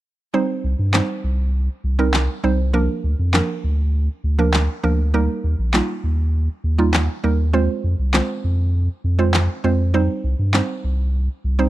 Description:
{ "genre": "dance-pop", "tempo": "100 BPM", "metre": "4/4", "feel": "straight", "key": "C minor", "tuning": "A4 = 440 Hz", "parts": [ { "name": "mallet-like synth pluck", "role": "accompaniment", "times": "0.3-11.7 s", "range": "F3 to C5", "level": "-22 LUFS", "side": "right 3 dB", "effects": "chorus" }, { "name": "warm sub bass", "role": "bass", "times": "0.6-11.7 s", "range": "Bb1 to G2", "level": "-18 LUFS", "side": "equal", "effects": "none" }, { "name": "electronic handclaps and snare drum", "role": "drums", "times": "0.9-10.7 s", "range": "none", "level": "-21 LUFS", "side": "left 1 dB", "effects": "none" } ], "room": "little or no reverb", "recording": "dry, close 1970s-style studio recording, lossy compression artefacts", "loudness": "-17 LUFS", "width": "side -15 dB against mid", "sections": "0.3-11.7 A section", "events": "none", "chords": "0.3 Cm; 2.7 Bb; 5.1 Eb; 7.5 Fm; 9.9 Cm", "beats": "| 0.34 0.94 1.54 2.14 | 2.74 3.34 3.94 4.54 | 5.14 5.74 6.34 6.94 | 7.54 8.14 8.74 9.34 | 9.94 10.54 11.14" }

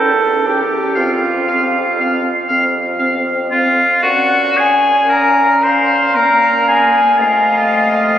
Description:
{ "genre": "classical, slow romantic movement for wind quintet", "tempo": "36-41 BPM (dotted quarters)", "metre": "6/8", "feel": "rubato", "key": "Bb minor", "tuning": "A4 = 440 Hz", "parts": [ { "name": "mellow concert flute", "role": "melody", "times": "0.0-8.2 s", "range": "F5 to C6", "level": "-15 LUFS", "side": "left 1 dB", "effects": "none" }, { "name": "bright oboe", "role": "second line", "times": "0.0-8.2 s", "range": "F4 to G5", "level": "-16 LUFS", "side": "equal", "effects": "none" }, { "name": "bright clarinet", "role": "accompaniment", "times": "0.0-8.2 s", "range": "F4 to F5", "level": "-19 LUFS", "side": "right 3 dB", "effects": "none" }, { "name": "dark French horn", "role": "accompaniment", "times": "0.0-8.2 s", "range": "A3 to Db4", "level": "-22 LUFS", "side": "right 1 dB", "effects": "none" }, { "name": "mellow bassoon", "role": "bass", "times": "0.0-8.2 s", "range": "E2 to C3", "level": "-23 LUFS", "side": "equal", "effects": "none" } ], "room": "wet cathedral reverb, RT60 4.8 s", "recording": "recorded on a phone in the room, studio reverb, compression", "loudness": "-11 LUFS", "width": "side -10 dB against mid", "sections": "0.0-4.0 A section; 4.0-8.2 B section", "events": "none", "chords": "0.0 A7/E; 1.0 F5; 4.0 Bbm; 7.2 Adim/C", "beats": "| 0.97 2.51 | 4.05 5.65 | 7.20" }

